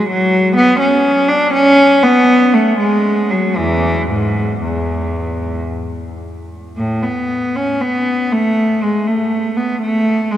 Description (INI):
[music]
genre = classical, baroque-style suite movement for unaccompanied cello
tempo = 54-64 BPM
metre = 3/4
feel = rubato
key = A major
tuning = A4 = 443 Hz
[part]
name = rich cello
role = solo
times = 0.0-10.4 s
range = E2 to D4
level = -12 LUFS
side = equal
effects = none
[sound]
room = wet cathedral reverb, RT60 6.1 s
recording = dark, warm production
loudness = -12 LUFS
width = side -12 dB against mid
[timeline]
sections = 0.0-10.4 A section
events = none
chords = none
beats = | 0.56 1.53 2.54 | 3.57 4.62 5.68 | 6.77 7.82 8.82 | 9.82